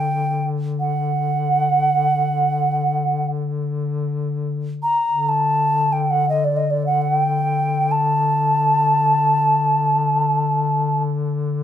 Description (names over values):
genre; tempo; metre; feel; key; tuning
caucasian folk, Caucasian lament; free time; none; none; D major; A4 = 439 Hz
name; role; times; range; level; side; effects
alto ocarina; melody; 0.0-11.0 s; D5 to Bb5; -18 LUFS; right 1 dB; none
warm duduk; drone; 0.0-11.6 s; D3; -22 LUFS; left 4 dB; none
room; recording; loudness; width
moderate large studio reverb, RT60 1.1 s; band playing live in one room; -17 LUFS; side -10 dB against mid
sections
0.0-11.6 A section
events
none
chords
none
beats
free time